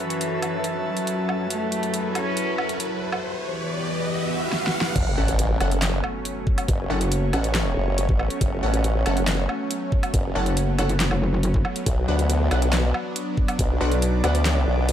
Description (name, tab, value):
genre	heavy wobble dubstep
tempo	139 BPM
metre	4/4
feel	half-time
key	F# phrygian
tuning	A4 = 440 Hz
part	rich cello	melody	0.0-2.7 s	E3 to C#4	-29 LUFS	equal	dub echo
part	supersaw pad	sustained chords	0.0-14.9 s	E2 to C#5	-30 LUFS	equal	phaser, vintage 12-bit sampler grit, sidechain pumping
part	riser, swell and impact	sound effects	0.7-6.7 s	none	-30 LUFS	equal	none
part	airy breathy pad	texture	0.0-14.9 s	B3 to A5	-32 LUFS	left 1 dB	chorus, sidechain pumping
part	big-room dance drum kit	drums	0.1-14.9 s	crash cymbal, handclaps, hi-hat, snare drum, woodblock	-28 LUFS	equal	overdrive
part	formant-sweep wobble bass	bass	5.0-14.9 s	F#1 to D2	-22 LUFS	equal	chorus, overdrive
part	electronic kick drum	drums	5.0-13.7 s	none	-22 LUFS	equal	none
part	orchestra-hit-like synth stab	stabs	5.2-14.4 s	C#4 to F#5	-30 LUFS	equal	built-in reverb, phaser, dub echo
part	metallic wobble bass	bass	6.9-7.3, 10.4-14.2 s	F#1 to B1	-22 LUFS	equal	chorus, overdrive
room	light reverb, digital ambience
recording	dark, warm production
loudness	-21 LUFS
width	side -10 dB against mid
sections	0.0-5.0 A section; 5.0-14.9 B section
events	build-up 0.0-5.0; riser 0.7-5.0; swell 4.1-5.0; drum fill 4.5-5.0; drop 5.0-14.9; impact 5.0-6.7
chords	0.0 F#m; 1.5 A69/F#; 3.2 Em; 5.0 F#m; 11.9 Bm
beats	0.21 0.64 1.07 | 1.50 1.94 2.37 2.80 | 3.23 3.66 4.09 4.53 | 4.96 5.39 5.82 6.25 | 6.68 7.12 7.55 7.98 | 8.41 8.84 9.27 9.71 | 10.14 10.57 11.00 11.43 | 11.86 12.29 12.73 13.16 | 13.59 14.02 14.45 14.88